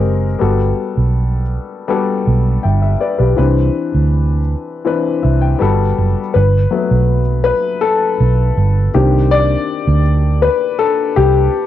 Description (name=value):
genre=lush 1970s-style soul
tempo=81 BPM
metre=4/4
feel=straight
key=G major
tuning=A4 = 440 Hz
part: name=warm baby grand piano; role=accompaniment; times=0.0-11.7 s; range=Eb3 to B5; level=-16 LUFS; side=left 6 dB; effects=cassette tape
part: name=vintage muted fingered electric bass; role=bass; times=0.0-11.5 s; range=F#1 to D2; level=-13 LUFS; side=right 2 dB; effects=none
room=light reverb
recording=home recording on cassette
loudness=-12 LUFS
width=side -12 dB against mid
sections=0.0-6.3 A section; 6.3-11.7 B section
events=grand piano fill 4.9-6.3; grand piano solo 6.3-11.7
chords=0.4 Gmaj9; 3.4 Cmaj9; 5.6 Gmaj9; 8.9 Cmadd9